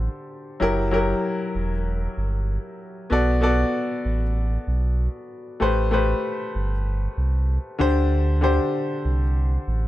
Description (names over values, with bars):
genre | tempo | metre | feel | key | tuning
afrobeats | 96 BPM | 4/4 | swing 55% on 16ths | unclear | A4 = 439 Hz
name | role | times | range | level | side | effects
clear grand piano | accompaniment | 0.0-9.9 s | D3 to D5 | -24 LUFS | left 2 dB | none
sub bass with octave | bass | 0.0-9.9 s | E1 to D2 | -22 LUFS | equal | none
room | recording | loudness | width
small room ambience | none | -20 LUFS | side -15 dB against mid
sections
0.0-9.9 A section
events
none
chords
0.0 D7sus4; 0.6 F#7b9; 3.1 Bm7; 5.6 Am9; 7.8 D7sus4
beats
| 0.61 1.24 1.86 2.49 | 3.11 3.74 4.36 4.99 | 5.61 6.24 6.86 7.49 | 8.11 8.74 9.36